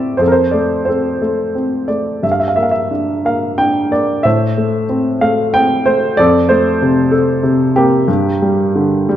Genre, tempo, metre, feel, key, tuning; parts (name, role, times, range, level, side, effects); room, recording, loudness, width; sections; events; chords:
classical, lyrical solo piano; 88-96 BPM; 3/4; rubato; A4 = 440 Hz
warm baby grand piano; solo; 0.0-9.2 s; F2 to G5; -12 LUFS; equal
light reverb; dark, warm production; -12 LUFS; side -11 dB against mid
0.0-9.2 A section
0.2 F; 2.2 Gm; 4.2 Am; 6.2 F; 8.1 Gm